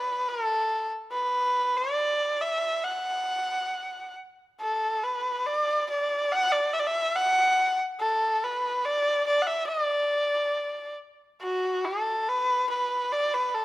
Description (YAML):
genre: chinese traditional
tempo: 70 BPM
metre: 2/4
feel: rubato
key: D gong mode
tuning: A4 = 440 Hz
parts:
  - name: rich erhu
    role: solo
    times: 0.0-13.6 s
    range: F#4 to F#5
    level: -24 LUFS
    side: equal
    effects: none
room: moderate recital hall reverb, RT60 1.6 s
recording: none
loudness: -24 LUFS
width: side -16 dB against mid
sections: 0.0-11.4 A section; 11.4-13.6 B section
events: none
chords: none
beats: 0.28 | 1.12 1.97 | 2.82 3.69 | 4.58 5.45 | 6.30 7.15 | 7.99 8.84 | 9.69 10.56 | 11.43 12.29 | 13.14